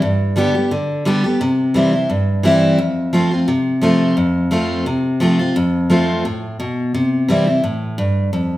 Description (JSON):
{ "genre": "bluegrass", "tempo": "173 BPM", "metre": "4/4", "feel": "straight", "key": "unclear", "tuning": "A4 = 440 Hz", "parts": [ { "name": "picked steel-string acoustic guitar", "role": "solo", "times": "0.0-8.6 s", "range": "F2 to G4", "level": "-14 LUFS", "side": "equal", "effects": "none" } ], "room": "wet large studio reverb, RT60 1.0 s", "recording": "heard from further back in the room", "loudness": "-14 LUFS", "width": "side -16 dB against mid", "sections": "0.0-2.8 A section; 2.8-8.6 A section", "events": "none", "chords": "0.0 G; 1.4 C; 2.8 F; 6.9 C", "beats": "| 0.02 0.37 0.71 1.06 | 1.41 1.75 2.10 2.44 | 2.79 3.14 3.48 3.83 | 4.17 4.52 4.87 5.21 | 5.56 5.91 6.25 6.60 | 6.94 7.29 7.63 7.98 | 8.32" }